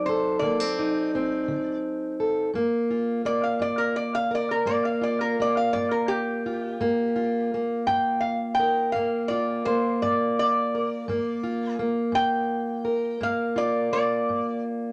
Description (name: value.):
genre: acoustic country blues, solo or duo.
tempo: 56 BPM (dotted quarters).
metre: 12/8.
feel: straight.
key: G minor.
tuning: A4 = 440 Hz.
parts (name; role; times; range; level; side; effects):
lap resonator guitar; melody; 0.0-14.6 s; G4 to G5; -28 LUFS; equal; none.
fingerpicked plugged-in steel-string acoustic guitar; accompaniment; 0.0-14.9 s; G2 to Bb4; -28 LUFS; equal; none.
room: wet small room reverb, RT60 0.5 s.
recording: none.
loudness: -25 LUFS.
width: mono.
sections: 0.0-2.5 A section; 2.5-14.9 B section.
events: resonator guitar played with a steel bar solo 2.5-14.9.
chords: 0.0 D7b9; 2.5 Gm7.